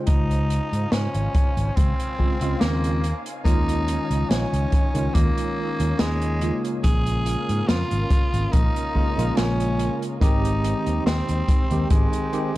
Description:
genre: vaporwave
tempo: 71 BPM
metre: 4/4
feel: swing 54% on 16ths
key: Bb dorian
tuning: A4 = 441 Hz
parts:
  - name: tine electric piano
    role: accompaniment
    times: 0.0-12.6 s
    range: Db3 to C5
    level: -28 LUFS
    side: right 1 dB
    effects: medium stereo tremolo, analog chorus
  - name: soft string machine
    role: sustained chords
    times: 0.0-12.6 s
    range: Db4 to Ab5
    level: -36 LUFS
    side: equal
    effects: ensemble chorus
  - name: growling tenor saxophone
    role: melody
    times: 0.1-12.6 s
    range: Ab3 to Ab4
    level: -28 LUFS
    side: equal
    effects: tape echo
  - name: fingered electric bass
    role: bass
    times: 0.1-12.0 s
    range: Ab1 to Ab2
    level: -24 LUFS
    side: equal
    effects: none
  - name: kick drum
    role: drums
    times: 0.1-12.1 s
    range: none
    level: -21 LUFS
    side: equal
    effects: none
  - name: open jazz drum kit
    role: drums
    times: 0.1-12.5 s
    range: hi-hat, snare drum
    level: -28 LUFS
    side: equal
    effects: none
room: little or no reverb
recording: dark, warm production, cassette tape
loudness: -20 LUFS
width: side -17 dB against mid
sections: 0.0-12.6 A section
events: none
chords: 0.1 Dbmaj7; 3.0 Eb9sus4; 6.8 Bbm7; 10.2 Abmaj7

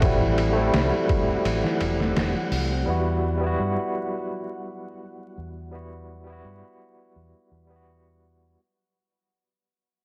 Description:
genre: trip hop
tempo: 84 BPM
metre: 4/4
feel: straight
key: E minor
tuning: A4 = 440 Hz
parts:
  - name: barky tine electric piano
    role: accompaniment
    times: 0.0-8.6 s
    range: G3 to F#4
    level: -29 LUFS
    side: equal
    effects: overdrive, tremolo, low-pass filter, tape echo
  - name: deep dub fingered electric bass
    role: bass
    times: 0.0-8.6 s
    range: E1 to G2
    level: -30 LUFS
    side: equal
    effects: none
  - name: trip hop sampler-style drum kit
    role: drums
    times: 0.0-2.7 s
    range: hi-hat, kick drum, ride cymbal, snare drum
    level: -29 LUFS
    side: equal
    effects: overdrive, cassette tape
  - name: flickering grainy texture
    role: texture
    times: 0.0-8.6 s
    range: F#3 to F#5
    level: -37 LUFS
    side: equal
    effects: built-in reverb, plate reverb
  - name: mellow electric guitar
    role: arpeggios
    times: 0.2-2.8 s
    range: E3 to C4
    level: -35 LUFS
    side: equal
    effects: tape echo
room: light reverb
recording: home recording on cassette, vinyl crackle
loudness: -24 LUFS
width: mono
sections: 0.0-8.6 A section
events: fade-out 0.0-8.6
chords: 0.0 Am7; 2.9 Emadd9

